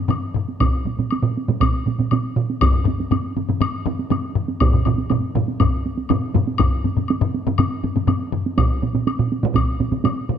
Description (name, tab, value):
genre	japanese traditional, taiko drum ensemble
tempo	121 BPM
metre	4/4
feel	straight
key	none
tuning	none
part	solo taiko drums	percussion	0.1-10.2 s	none	-24 LUFS	right 5 dB	none
part	taiko ensemble	percussion	0.1-8.4 s	none	-22 LUFS	left 4 dB	none
part	woodblock	percussion	0.1-10.2 s	none	-28 LUFS	left 6 dB	none
part	solo taiko drums	percussion	0.6-9.7 s	none	-21 LUFS	equal	none
part	taiko ensemble	percussion	0.6-10.4 s	none	-22 LUFS	right 4 dB	none
room	moderate scoring stage reverb, RT60 1.7 s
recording	close, detailed microphones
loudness	-18 LUFS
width	side -8 dB against mid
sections	0.0-10.4 A section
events	none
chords	none